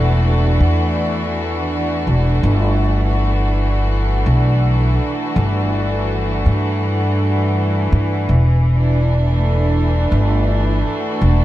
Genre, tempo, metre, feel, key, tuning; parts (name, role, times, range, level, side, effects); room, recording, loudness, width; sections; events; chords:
ambient dub; 82 BPM; 4/4; swing 59% on 16ths; E minor; A4 = 442 Hz
clear studio string section; sustained chords; 0.0-11.4 s; E3 to F#4; -20 LUFS; equal
upright bass; bass; 0.0-11.4 s; E1 to G2; -16 LUFS; equal
little or no reverb; dark, warm production; -14 LUFS; side -14 dB against mid
0.0-11.4 A section
0.0 E7(no3); 2.4 Gmaj9; 8.3 Em7